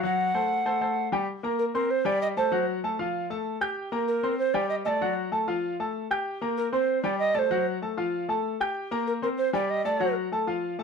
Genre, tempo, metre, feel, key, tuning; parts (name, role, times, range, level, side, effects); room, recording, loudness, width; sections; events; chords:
latin; 192 BPM; 4/4; straight; A4 = 440 Hz
breathy mellow alto recorder; melody; 0.0-10.1 s; Bb4 to F#5; -26 LUFS; right 3 dB; plate reverb
clear grand piano; accompaniment; 0.0-10.8 s; E#3 to G6; -27 LUFS; left 2 dB
moderate studio reverb, RT60 0.6 s; dark, warm production; -25 LUFS; side -5 dB against mid
0.0-1.3 A section; 1.3-10.8 B section
0.0 F#dim; 1.3 Bbsus2; 1.9 C5; 2.5 F#mmaj7; 3.1 F; 3.8 Gm; 4.4 C5; 5.0 F#mmaj7; 5.6 F; 6.3 Gm; 6.9 C5; 7.5 F#mmaj7; 8.1 F; 8.8 Gm; 9.4 C5; 10.0 F#mmaj7